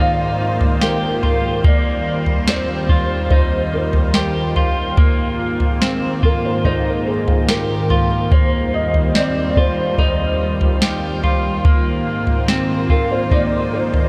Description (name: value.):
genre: dream pop.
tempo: 72 BPM.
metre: 4/4.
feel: straight.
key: Eb major.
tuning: A4 = 442 Hz.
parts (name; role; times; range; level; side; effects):
felt-muted upright piano; melody; 0.0-14.1 s; Ab4 to F5; -25 LUFS; equal; ensemble chorus, tape echo.
lush unison pad; sustained chords; 0.0-14.1 s; Eb2 to C5; -23 LUFS; equal; chorus, phaser.
clean electric guitar; arpeggios; 0.0-14.1 s; Bb3 to G4; -25 LUFS; equal; subtle chorus, tape echo.
soft vintage rhythm box; drums; 0.6-14.1 s; kick drum, snare drum, toms; -20 LUFS; equal; none.
room: wet huge ambient reverb, RT60 7.9 s.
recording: dreamy mix soaked in reverb.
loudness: -17 LUFS.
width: mono.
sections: 0.0-14.1 A section.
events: none.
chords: 0.0 Ab69; 1.6 Eb69; 5.0 Ab69; 8.3 Eb69; 11.6 Ab69.